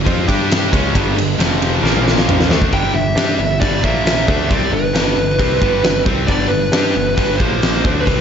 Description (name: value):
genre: hard rock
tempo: 135 BPM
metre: 4/4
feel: straight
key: unclear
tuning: A4 = 439 Hz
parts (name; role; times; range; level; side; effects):
- high-gain distorted guitar; riff; 0.0-8.2 s; F2 to G4; -21 LUFS; left 10 dB; distortion
- picked electric bass; bass; 0.0-8.2 s; F1 to G2; -21 LUFS; equal; none
- high-gain distorted guitar; riff; 0.1-8.2 s; F2 to G4; -22 LUFS; right 9 dB; distortion, slapback echo
- huge arena drum kit; drums; 0.1-8.2 s; hi-hat, kick drum, ride cymbal, snare drum, toms; -17 LUFS; equal; none
- high-gain lead guitar; melody; 2.7-8.2 s; B4 to G5; -19 LUFS; right 1 dB; distortion, slapback echo
room: moderate lush hall reverb, RT60 1.8 s, small room ambience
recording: big arena sound, nothing above 7.7 kHz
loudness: -13 LUFS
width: side -8 dB against mid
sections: 0.0-2.7 A section; 2.7-8.2 B section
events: drum fill 1.8-2.7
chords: 0.0 G5; 1.4 F5; 1.8 Bb5; 2.5 D5; 2.7 G5; 3.8 Bb5; 4.3 G; 7.4 Bb5